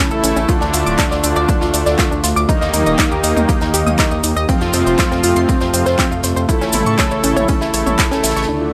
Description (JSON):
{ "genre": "melodic techno", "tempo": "120 BPM", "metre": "4/4", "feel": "straight", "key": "unclear", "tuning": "A4 = 442 Hz", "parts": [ { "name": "warm analog pad", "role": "sustained chords", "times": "0.0-8.7 s", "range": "C3 to G4", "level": "-24 LUFS", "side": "equal", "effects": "chorus, sidechain pumping" }, { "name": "woody wave-folded pluck", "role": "arpeggios", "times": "0.0-8.7 s", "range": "C4 to Eb6", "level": "-23 LUFS", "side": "equal", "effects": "chorus, sidechain pumping, dub echo" }, { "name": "tight metal drum kit", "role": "drums", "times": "0.0-8.5 s", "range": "hi-hat, snare drum", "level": "-33 LUFS", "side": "equal", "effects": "none" }, { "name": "brassy analog pad", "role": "stabs", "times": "0.1-8.7 s", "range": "D3 to A4", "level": "-22 LUFS", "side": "equal", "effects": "chorus, vintage 12-bit sampler grit, sidechain pumping, dub echo" }, { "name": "round analog bass", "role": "bass", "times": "0.1-8.7 s", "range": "D1 to A2", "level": "-24 LUFS", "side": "equal", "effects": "sidechain pumping" }, { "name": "cabasa", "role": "percussion", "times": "0.1-8.5 s", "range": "none", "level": "-27 LUFS", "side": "equal", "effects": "none" }, { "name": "techno drum kit", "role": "drums", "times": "0.2-8.3 s", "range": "handclaps, hi-hat, toms", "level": "-22 LUFS", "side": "equal", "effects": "sidechain pumping on hats, sidechain pumping on toms" }, { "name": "electronic kick drum", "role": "drums", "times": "0.5-8.1 s", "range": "none", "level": "-20 LUFS", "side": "equal", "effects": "none" }, { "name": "overtone-sweeping drone", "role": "drone", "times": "8.5-8.7 s", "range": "none", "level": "barely audible", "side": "none", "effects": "none" } ], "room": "light reverb, small room ambience", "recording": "lossy compression artefacts", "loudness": "-15 LUFS", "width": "mono", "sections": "0.0-8.5 A section", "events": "drop 0.0-8.5", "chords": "0.5 Dm; 2.5 Eb; 4.5 F; 6.5 A" }